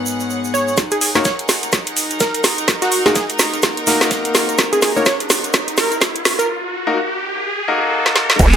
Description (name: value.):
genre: bass house.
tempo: 126 BPM.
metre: 4/4.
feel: swing 59% on 16ths.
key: Eb minor.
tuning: A4 = 438 Hz.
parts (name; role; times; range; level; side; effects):
bright grand piano; stabs; 0.0-8.4 s; Ab2 to Bb4; -21 LUFS; left 3 dB; sidechain pumping, dub echo.
rich studio string section; texture; 0.0-6.5 s; Cb4 to Gb5; -24 LUFS; equal; sidechain pumping.
egg shaker; percussion; 0.1-8.6 s; none; -26 LUFS; right 6 dB; none.
plucky unison lead; melody; 0.5-8.6 s; Gb4 to Db5; -21 LUFS; right 1 dB; dub echo.
electronic kick drum; drums; 0.8-8.5 s; none; -18 LUFS; right 1 dB; overdrive, high-pass filter on kick.
garage drum kit; drums; 0.8-8.6 s; crash cymbal, hi-hat, snare drum; -16 LUFS; right 1 dB; none.
shaker and snare drum; drums; 0.8-8.5 s; none; -26 LUFS; left 2 dB; high-pass filter on snare, sidechain pumping on perc, high-pass filter on perc, high-pass filter on room.
riser and downlifter; sound effects; 2.2-8.6 s; none; -24 LUFS; equal; none.
vowel-sweep wobble bass; bass; 8.4-8.6 s; Eb1; -12 LUFS; right 1 dB; chorus, overdrive, sidechain pumping.
room: moderate plate reverb, RT60 1.3 s, small room ambience.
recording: high-pass filter.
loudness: -14 LUFS.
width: side -8 dB against mid.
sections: 0.8-8.4 A section.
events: build-up 0.8-8.4; drum fill 0.8-6.5, 8.0-8.4; riser 2.2-8.4.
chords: 0.0 Abm7; 0.8 Ebm.